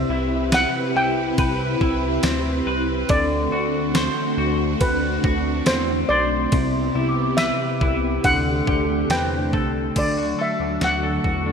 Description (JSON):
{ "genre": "dream pop", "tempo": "70 BPM", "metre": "4/4", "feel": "straight", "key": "D mixolydian", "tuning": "A4 = 440 Hz", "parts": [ { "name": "steel pan", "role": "melody", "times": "0.0-11.5 s", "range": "B4 to G5", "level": "-24 LUFS", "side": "equal", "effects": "digital delay" }, { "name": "string machine, violas", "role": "sustained chords", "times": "0.0-11.5 s", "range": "C3 to B4", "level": "-24 LUFS", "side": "right 1 dB", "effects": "ensemble chorus" }, { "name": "clean electric guitar", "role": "arpeggios", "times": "0.0-11.5 s", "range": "C3 to C5", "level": "-25 LUFS", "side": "left 2 dB", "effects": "wide subtle chorus, digital delay" }, { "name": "chorused synth bass", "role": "bass", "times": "0.0-11.5 s", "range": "B1 to E2", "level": "-27 LUFS", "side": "equal", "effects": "none" }, { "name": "celesta", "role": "texture", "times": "0.0-8.6 s", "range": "E5 to D6", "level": "-34 LUFS", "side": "equal", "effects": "ensemble chorus, digital delay" }, { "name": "detuned 8-bit digital drum machine", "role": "drums", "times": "0.5-11.4 s", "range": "crash cymbal, hi-hat, kick drum, ride cymbal, snare drum, tambourine", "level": "-24 LUFS", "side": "equal", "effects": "gated reverb" } ], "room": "moderate lush hall reverb, RT60 2.6 s", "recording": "bright 1980s-style digital production", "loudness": "-18 LUFS", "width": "side -6 dB against mid", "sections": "0.0-10.0 A section; 10.0-11.5 B section", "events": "none", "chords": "0.0 Cmaj7; 3.1 D7; 6.5 Cmaj7; 8.2 D7sus4; 10.0 D" }